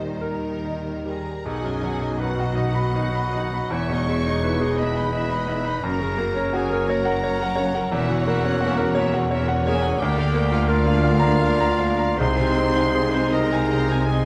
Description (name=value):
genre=classical, romantic movement for piano and orchestra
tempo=47-59 BPM (dotted quarters)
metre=12/8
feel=rubato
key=B major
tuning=A4 = 440 Hz
part: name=bright grand piano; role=melody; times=0.0-14.2 s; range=B1 to B5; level=-26 LUFS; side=equal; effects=none
part: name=rich studio violin section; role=melody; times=0.0-14.2 s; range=Ab4 to C6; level=-40 LUFS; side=equal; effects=none
part: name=flute section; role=second line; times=0.0-1.1 s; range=Eb5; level=-41 LUFS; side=equal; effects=none
part: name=rich studio violin section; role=second line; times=0.0-14.2 s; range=Eb4 to C#6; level=-35 LUFS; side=equal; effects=none
part: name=dark studio viola section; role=accompaniment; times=0.0-14.2 s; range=D#3 to D5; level=-34 LUFS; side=equal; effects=none
part: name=mellow French horn section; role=sustained chords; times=0.0-14.2 s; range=F#3 to Eb4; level=-30 LUFS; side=equal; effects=none
part: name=rich studio cello section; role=bass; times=0.0-14.2 s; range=D2 to Eb3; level=-30 LUFS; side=equal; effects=none
part: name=rich studio double bass section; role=bass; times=0.0-14.2 s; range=E1 to Eb2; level=-30 LUFS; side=equal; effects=none
part: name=warm clarinet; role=second line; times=1.1-14.2 s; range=F4 to C#5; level=-31 LUFS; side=equal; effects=none
room=light reverb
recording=close, detailed microphones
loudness=-22 LUFS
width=mono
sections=0.0-1.5 A section; 1.5-14.2 B section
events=none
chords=0.0 Eb; 1.5 B; 3.7 Emaj7; 5.8 F#; 7.9 F#7/E; 10.0 Bb/D; 12.2 Ab/C